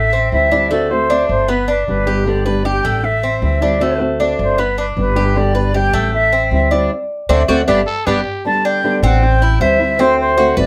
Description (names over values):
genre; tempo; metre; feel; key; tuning
latin; 155 BPM; 4/4; straight; G major; A4 = 440 Hz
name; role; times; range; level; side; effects
concert flute; melody; 0.0-10.7 s; B4 to A5; -20 LUFS; equal; none
Cuban tres; arpeggios; 0.0-10.7 s; A3 to C5; -21 LUFS; equal; none
upright bass; bass; 0.0-10.7 s; G1 to D2; -21 LUFS; equal; none
flamenco guitar; accompaniment; 0.3-10.7 s; D3 to G4; -21 LUFS; equal; none
growling trumpet; second line; 7.9-8.4 s; G4 to A4; -24 LUFS; equal; none
room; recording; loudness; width
moderate studio reverb, RT60 0.5 s; none; -15 LUFS; mono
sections
0.0-8.4 A section; 8.4-10.7 B section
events
band accent 6.9-8.4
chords
0.0 Am7; 0.7 D7; 1.5 G; 3.0 Am7; 3.8 D7; 4.6 G; 6.1 Am7; 6.9 D7; 7.7 G; 9.2 Am7; 10.0 D7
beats
0.33 | 0.71 1.10 1.49 1.88 | 2.26 2.65 3.04 3.42 | 3.81 4.20 4.59 4.97 | 5.36 5.75 6.13 6.52 | 6.91 7.29 7.68 8.06 | 8.45 8.84 9.22 9.61 | 9.99 10.38